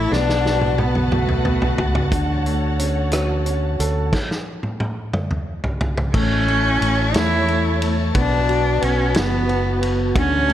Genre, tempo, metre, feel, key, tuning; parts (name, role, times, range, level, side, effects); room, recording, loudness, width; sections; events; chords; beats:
six-eight pop ballad; 60 BPM (dotted quarters); 6/8; straight; A4 = 441 Hz
rich cello; melody; 0.0-1.9, 6.1-10.5 s; A3 to E4; -21 LUFS; left 1 dB
clear concert grand piano; accompaniment; 0.0-10.5 s; D3 to A4; -24 LUFS; left 1 dB
dark studio string section; sustained chords; 0.0-10.5 s; E4 to C#6; -27 LUFS; right 1 dB
fingered electric bass; bass; 0.0-10.5 s; F#1 to E2; -21 LUFS; equal
loose indie drum kit; drums; 0.1-10.5 s; crash cymbal, hi-hat, kick drum, ride cymbal, rim click, snare drum, toms; -23 LUFS; equal
light reverb; -17 LUFS; side -11 dB against mid
0.0-6.1 A section; 6.1-10.5 B section
drum fill 0.1-2.1, 4.1-6.1; stop 4.1-6.1
0.1 Bm7; 2.1 Dmaj7; 4.1 N.C.; 6.1 A; 8.1 Bm7
| 0.11 1.12 | 2.12 3.13 | 4.13 5.13 | 6.14 7.14 | 8.15 9.15 | 10.15